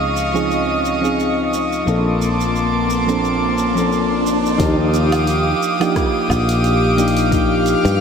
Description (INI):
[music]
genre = sunset chillout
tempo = 88 BPM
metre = 4/4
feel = swing 55% on 16ths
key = Eb lydian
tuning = A4 = 440 Hz
[part]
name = soft electric-piano-like synth keys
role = accompaniment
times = 0.0-8.0 s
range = F3 to A4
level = -20 LUFS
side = moving between left 4 dB and right 5 dB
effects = chorus, auto-pan, low-pass filter, diffuse ambient delay
[part]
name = airy breathy pad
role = sustained chords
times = 0.0-8.0 s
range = Bb3 to F6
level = -19 LUFS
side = equal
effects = chorus
[part]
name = sustaining fretless electric bass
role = bass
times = 0.0-8.0 s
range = Bb1 to G2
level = -20 LUFS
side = equal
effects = none
[part]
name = riser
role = sound effects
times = 2.2-4.6 s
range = none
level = -26 LUFS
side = left 1 dB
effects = none
[part]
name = deep house drum kit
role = drums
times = 0.2-8.0 s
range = hi-hat, rim click, shaker, woodblock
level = -30 LUFS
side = right 2 dB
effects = none
[part]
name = electronic kick drum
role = drums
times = 4.6-7.5 s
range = none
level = -22 LUFS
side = equal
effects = none
[sound]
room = moderate plate reverb, RT60 2.2 s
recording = dreamy mix soaked in reverb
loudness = -15 LUFS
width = side -6 dB against mid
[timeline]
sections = 0.0-4.6 A section; 4.6-8.0 B section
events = riser 2.2-4.6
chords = 0.0 Dbmaj9; 1.9 Bbmaj9; 4.6 Ebmaj9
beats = 0.50 1.19 | 1.87 2.55 3.23 3.91 | 4.59 5.28 5.96 6.64 | 7.32 8.00